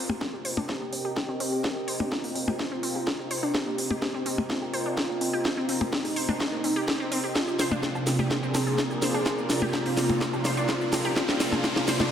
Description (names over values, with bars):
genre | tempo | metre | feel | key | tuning
melodic techno | 126 BPM | 4/4 | straight | C minor | A4 = 440 Hz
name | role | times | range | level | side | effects
wide unison lead | melody | 0.0-12.0 s | Eb4 to Ab4 | -32 LUFS | right 1 dB | analog chorus, sidechain pumping, tape echo
sweeping resonant pad | sustained chords | 0.0-12.1 s | C3 to Eb5 | -33 LUFS | right 1 dB | chorus, sidechain pumping
wide unison pluck | arpeggios | 0.0-12.1 s | Bb3 to C5 | -32 LUFS | equal | sidechain pumping, diffuse ambient delay
warbly tape-like pad | texture | 0.0-12.1 s | C4 to Bb5 | -38 LUFS | equal | chorus, built-in reverb, sidechain pumping
techno drum kit | drums | 0.1-12.1 s | hi-hat, percussion blips, shaker, snare drum, woodblock | -28 LUFS | left 1 dB | overdrive, sidechain pumping on perc, sidechain pumping on hats
electronic kick drum | drums | 0.2-11.7 s | none | -37 LUFS | equal | overdrive, high-pass filter on kick
riser | sound effects | 9.6-12.1 s | none | -38 LUFS | left 1 dB | none
room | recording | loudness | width
wet lush hall reverb, RT60 1.9 s | dreamy mix soaked in reverb | -24 LUFS | side -9 dB against mid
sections
0.0-12.1 A section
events
build-up 0.0-12.1; drum fill 0.0-12.1; filter sweep on synth arpeggio sound 0.0-12.1; filter sweep on analog synth lead 0.0-12.1; filter sweep on analog synth pad 0.0-12.1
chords
0.0 Cm7; 7.4 Bb/C